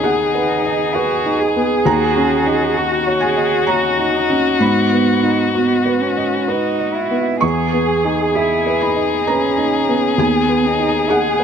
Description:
neoclassical piano and strings; 65 BPM; 3/4; rubato; B major; A4 = 440 Hz
muted violin; melody; 0.0-11.4 s; F#4 to G#4; -18 LUFS; left 5 dB
muted cello; second line; 0.0-11.4 s; B3 to G#4; -20 LUFS; right 6 dB
felt-muted upright piano; accompaniment; 0.0-11.4 s; D#2 to C#6; -18 LUFS; right 1 dB
light reverb; -14 LUFS; side -7 dB against mid
0.0-11.4 A section
0.0 B6/D#; 1.9 D#m7; 4.6 G#m7; 7.4 Emaj7; 10.2 B6/D#
0.04 0.95 | 1.86 2.76 3.68 | 4.61 5.55 6.48 | 7.42 8.36 9.28 | 10.19 11.10

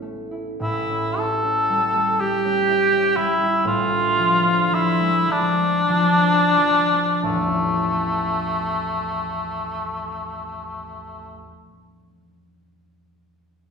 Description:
classical, romantic duo for cor anglais and harp; 28-42 BPM (dotted quarters); 6/8; rubato; A major; A4 = 440 Hz
concert harp; accompaniment; 0.0-11.7 s; A1 to E4; -25 LUFS; left 1 dB
mellow cor anglais; melody; 0.6-11.5 s; A3 to A4; -19 LUFS; equal
wet recital hall reverb, RT60 1.5 s; recorded in a church or concert hall; -18 LUFS; side -5 dB against mid
0.6-7.2 A section; 7.2-10.7 B section
slowing down 0.0-7.2
0.0 A; 0.6 A7; 3.7 Dm/A; 7.2 A
| 0.62 2.19 | 3.66 5.30 | 7.25 8.99

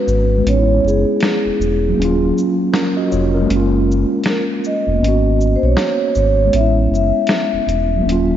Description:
lo-fi hip hop; 79 BPM; 4/4; swing 62% on 16ths; A4 = 440 Hz
vibraphone with soft mallets; melody; 0.0-8.0 s; G#4 to E5; -19 LUFS; equal; tape echo
mellow tine electric piano; accompaniment; 0.0-8.4 s; F#3 to D#5; -18 LUFS; equal; medium stereo tremolo
sub bass with octave; bass; 0.1-8.4 s; D#1 to B1; -17 LUFS; equal
dusty soul sampler-style drum kit; drums; 0.1-8.3 s; hi-hat, shaker, snare drum; -23 LUFS; equal; vintage 12-bit sampler grit
moderate lush hall reverb, RT60 2.7 s; dreamy mix soaked in reverb, vinyl crackle, nothing above 7.6 kHz; -13 LUFS; side -10 dB against mid
0.0-8.4 A section
break 0.0-8.4
0.5 Amaj9; 2.0 D#m9; 3.5 F#maj7; 5.0 G#m11; 6.5 Amaj9
| 0.46 1.21 1.97 2.73 | 3.49 4.25 5.01 5.77 | 6.53 7.29 8.05

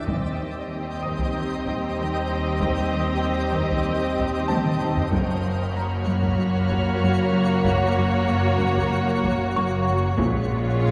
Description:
cinematic, suspense film score; 95 BPM; 4/4; straight; A4 = 441 Hz
muted studio violin section; melody; 0.0-10.9 s; C#5 to Eb5; -34 LUFS; equal
muted studio violin section; second line; 0.0-10.9 s; F4 to G4; -34 LUFS; equal
muted studio viola section; accompaniment; 0.0-10.9 s; Ab3 to C4; -32 LUFS; equal
dark French horn section; sustained chords; 0.0-10.9 s; F#3 to Db4; -33 LUFS; equal
twinkling granular texture; sustained chords; 0.0-10.9 s; F#4 to G5; -35 LUFS; equal; built-in reverb
muted studio cello section; bass; 0.0-10.9 s; Eb2 to Bb2; -32 LUFS; equal
muted studio double bass section; bass; 0.0-10.9 s; F#1 to Eb2; -31 LUFS; equal
bright concert grand piano; texture; 0.0-10.9 s; A5 to Eb6; -35 LUFS; equal
muted studio cello section; riff; 0.1-10.9 s; F#2 to Eb4; -31 LUFS; equal
taiko ensemble; drums; 0.1-10.8 s; -33 LUFS; equal
muted studio violin section; texture; 0.1-9.8 s; G5 to F6; -41 LUFS; equal
wet concert hall reverb, RT60 2.3 s; -23 LUFS; mono
0.0-10.9 A section
drum fill 4.5-5.1
0.1 Eb6; 5.1 F#; 10.2 Bbm7
| 0.08 0.71 1.34 1.98 | 2.61 3.24 3.87 4.50 | 5.13 5.76 6.40 7.03 | 7.66 8.29 8.92 9.55 | 10.19 10.82

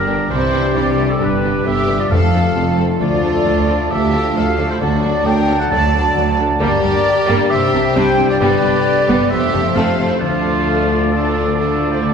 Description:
cinematic; 133 BPM; 4/4; straight; A4 = 440 Hz
rich studio violin section; melody; 0.0-12.1 s; A3 to D5; -24 LUFS; left 4 dB
bright flute section; second line; 0.0-12.1 s; F4 to A5; -25 LUFS; left 1 dB
mellow clarinet; second line; 0.0-12.1 s; F4 to A5; -26 LUFS; left 2 dB
warm oboe; second line; 0.0-12.1 s; F4 to A5; -22 LUFS; right 2 dB
clear trombone section; sustained chords; 0.0-12.1 s; A2 to A3; -26 LUFS; equal
mellow French horn section; sustained chords; 0.0-12.1 s; F#3 to A4; -24 LUFS; left 4 dB
concert harp; arpeggios; 0.0-12.1 s; F2 to A5; -24 LUFS; left 4 dB
warm trumpet section; stabs; 0.0-12.1 s; A4 to A5; -24 LUFS; right 2 dB
rich symphonic cello section; bass; 0.0-12.1 s; D2 to C3; -22 LUFS; right 1 dB
rich symphonic double bass section; bass; 0.0-12.1 s; F1 to D2; -23 LUFS; right 2 dB
rich symphonic violin section; second line; 0.1-12.1 s; G3 to A4; -27 LUFS; left 2 dB
dark symphonic viola section; accompaniment; 0.1-12.1 s; C3 to C4; -23 LUFS; right 2 dB
timpani; percussion; 2.1-2.8 s; F2; -21 LUFS; left 1 dB
wet scoring stage reverb, RT60 2.0 s; heard from further back in the room; -13 LUFS; side -6 dB against mid
0.0-12.1 A section
0.3 Cadd9; 1.2 G; 2.1 F; 3.0 Dm; 4.8 D; 6.6 Gm; 7.5 Cadd9; 8.4 G; 9.3 F; 10.2 Dm
0.30 0.76 | 1.21 1.66 2.11 2.56 | 3.02 3.47 3.92 4.37 | 4.81 5.26 5.71 6.16 | 6.61 7.06 7.51 7.96 | 8.41 8.86 9.31 9.76 | 10.21 10.66 11.12 11.57 | 12.03

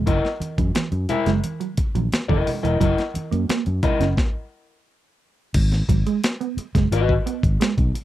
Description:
funk; 88 BPM; 4/4; straight; G# minor; A4 = 440 Hz
mellow electric guitar; riff; 0.0-8.0 s; E3 to C#4; -26 LUFS; right 8 dB
fingered electric bass; bass; 0.0-7.9 s; E1 to F#2; -22 LUFS; equal
electric guitar at the edge of break-up; accompaniment; 0.1-7.1 s; E4 to E5; -24 LUFS; left 4 dB; spring reverb
breakbeat sampler-style drum kit; drums; 0.1-8.0 s; crash cymbal, hi-hat, kick drum, snare drum; -22 LUFS; equal
congas; percussion; 0.1-4.0 s; -31 LUFS; right 4 dB
little or no reverb; dry, close 1970s-style studio recording; -19 LUFS; side -14 dB against mid
0.0-5.5 A section; 5.5-8.0 B section
stop 4.2-5.5
0.1 F#13; 5.5 G#m7
| 0.07 0.75 1.44 2.12 | 2.81 3.49 4.18 4.86 | 5.55 6.23 6.92 7.60

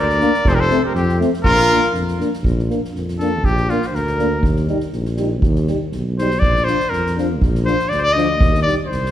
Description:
balkan folk, Balkan brass band; 120 BPM; 2/4; straight; Bb major; A4 = 439 Hz
clear trumpet; melody; 0.0-9.1 s; F4 to Eb5; -19 LUFS; left 1 dB
clear trumpet; second line; 0.0-1.9 s; C4 to Bb4; -24 LUFS; equal
mellow tuba; bass; 0.0-9.1 s; F1 to F2; -20 LUFS; equal
soft-mallet drum kit; percussion; 0.1-9.1 s; kick drum, snare drum; -21 LUFS; right 1 dB
mellow euphonium; accompaniment; 0.2-8.8 s; C4 to Eb4; -25 LUFS; left 6 dB
mellow euphonium; accompaniment; 0.2-8.8 s; F3 to Bb3; -26 LUFS; right 6 dB
moderate recital hall reverb, RT60 1.8 s; recorded in a church or concert hall; -15 LUFS; side -11 dB against mid
0.0-2.4 A section; 2.4-9.1 B section
trumpet solo 2.4-9.1
0.5 F; 1.4 Bb; 4.4 Eb; 6.4 Bb; 8.4 Eb
| 0.45 0.95 | 1.45 1.95 | 2.45 2.94 | 3.44 3.94 | 4.44 4.94 | 5.44 5.94 | 6.43 6.93 | 7.43 7.92 | 8.42 8.91

